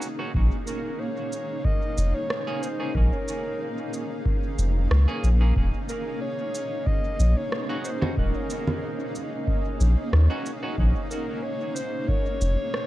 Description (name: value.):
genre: ambient dub.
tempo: 92 BPM.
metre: 4/4.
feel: swing 54% on 16ths.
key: unclear.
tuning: A4 = 440 Hz.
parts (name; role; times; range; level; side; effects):
granular cloud pad; sustained chords; 0.0-12.9 s; Bb3 to F5; -32 LUFS; equal; built-in reverb.
semi-hollow electric guitar; stabs; 0.0-10.8 s; Bb3 to Ab4; -38 LUFS; right 2 dB; wide subtle chorus, dub echo.
electronic cabasa, rim click and congas; drums; 0.0-12.9 s; none; -32 LUFS; right 1 dB; dub echo.
soft dub sub bass; bass; 0.3-12.6 s; Eb1 to Eb2; -19 LUFS; equal; none.
electronic kick drum; drums; 0.3-12.2 s; none; -26 LUFS; equal; none.
warm clarinet; melody; 0.7-12.9 s; Bb4 to Eb5; -33 LUFS; equal; dub echo.
bubbling stepped-filter texture; texture; 5.6-12.9 s; Db4 to Eb5; -38 LUFS; equal; chorus, built-in reverb.
room: little or no reverb.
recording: none.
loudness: -23 LUFS.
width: side -15 dB against mid.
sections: 0.0-12.9 A section.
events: none.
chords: 0.3 Bbm7; 5.6 Ebm7; 10.8 Bbm7.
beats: | 0.34 1.00 1.65 2.30 | 2.95 3.60 4.26 4.91 | 5.56 6.21 6.87 7.52 | 8.17 8.82 9.47 10.13 | 10.78 11.43 12.08 12.74.